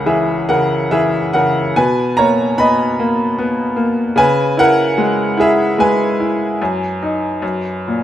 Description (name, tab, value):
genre	classical, lyrical solo piano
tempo	65-78 BPM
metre	3/4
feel	rubato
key	unclear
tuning	A4 = 440 Hz
part	bright upright piano	solo	0.0-8.0 s	C#2 to B5	-13 LUFS	equal	none
room	light reverb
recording	close, detailed microphones, faint mains hum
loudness	-13 LUFS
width	side -11 dB against mid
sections	0.0-8.0 A section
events	none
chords	0.0 C#m; 1.7 Bmaj13; 4.2 C#m7; 6.6 B/F#; 7.4 F#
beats	0.05 0.91 | 1.75 2.58 3.38 | 4.17 4.97 5.79 | 6.60 7.42